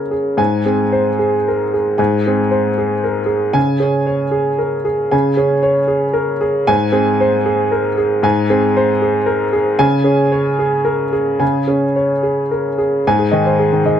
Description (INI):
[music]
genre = neoclassical minimalist piano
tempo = 114 BPM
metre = 3/4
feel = rubato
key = Ab major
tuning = A4 = 441 Hz
[part]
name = clear upright piano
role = solo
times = 0.0-14.0 s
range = Ab2 to Ab5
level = -13 LUFS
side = equal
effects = none
[sound]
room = light reverb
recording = nothing above 10.9 kHz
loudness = -13 LUFS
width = side -9 dB against mid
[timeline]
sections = 0.4-13.1 A section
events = none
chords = 0.4 Ab; 3.6 Db5; 6.7 Ab; 9.8 Db5; 13.1 Ab